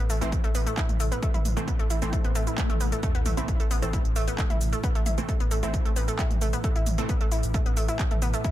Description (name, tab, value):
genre	driving peak-time techno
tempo	133 BPM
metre	4/4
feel	straight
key	A minor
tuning	A4 = 438 Hz
part	saturated sub bass	bass	0.0-8.3 s	A1	-29 LUFS	equal	overdrive, sidechain pumping, low-pass filter
part	metallic inharmonic drone	drone	0.0-8.5 s	A2 to E3	-36 LUFS	right 1 dB	chorus, built-in reverb, sidechain pumping
part	analog pluck	riff	0.1-8.5 s	A3 to E4	-32 LUFS	equal	chorus, overdrive, sidechain pumping, dub echo
part	techno drum kit	drums	0.1-8.5 s	handclaps, hi-hat, shaker, toms	-35 LUFS	right 1 dB	sidechain pumping on hats, sidechain pumping on toms, sidechain pumping on perc
part	rave stab	stabs	0.2-7.1 s	E3 to C4	-35 LUFS	right 2 dB	chorus, built-in reverb, sidechain pumping, dub echo
part	electronic kick drum	drums	0.3-8.5 s	none	-26 LUFS	equal	none
part	swell and sub drop	sound effects	2.3-4.8 s	none	-36 LUFS	left 1 dB	none
room	little or no reverb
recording	dense, heavily limited modern master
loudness	-23 LUFS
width	side -13 dB against mid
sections	0.0-3.0 A section; 3.0-8.5 B section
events	swell 2.3-3.0; drop 3.0-8.5; impact 3.0-4.8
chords	0.0 Am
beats	0.33 0.78 | 1.23 1.68 2.13 2.58 | 3.03 3.48 3.93 4.38 | 4.84 5.29 5.74 6.19 | 6.64 7.09 7.54 7.99 | 8.45